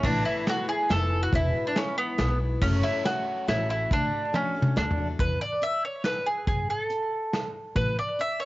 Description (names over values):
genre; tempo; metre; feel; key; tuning
folk rock and heartland rock; 140 BPM; 3/4; straight; unclear; A4 = 440 Hz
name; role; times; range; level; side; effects
bowl-back mandolin; melody; 0.0-8.4 s; B3 to E5; -27 LUFS; right 1 dB; cassette tape, analog delay
picked steel-string acoustic guitar; accompaniment; 0.0-5.2 s; E2 to F#4; -33 LUFS; left 4 dB; cassette tape
upright bass; bass; 0.0-7.9 s; E1 to F#2; -28 LUFS; equal; none
soft brush drum kit; drums; 0.0-8.3 s; crash cymbal, hi-hat, kick drum, snare drum, toms; -29 LUFS; equal; cassette tape
room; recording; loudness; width
little or no reverb; home recording on cassette, nothing above 7.6 kHz; -24 LUFS; side -18 dB against mid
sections
0.0-5.2 A section; 5.2-8.4 B section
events
drum fill 4.3-5.2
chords
0.0 Asus2; 1.3 E; 2.6 F#m; 3.9 D; 5.2 E5; 6.5 F#m; 7.8 Asus2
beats
| 0.04 0.47 0.90 | 1.33 1.76 2.19 | 2.61 3.04 3.47 | 3.90 4.33 4.76 | 5.19 5.62 6.04 | 6.47 6.90 7.33 | 7.76 8.19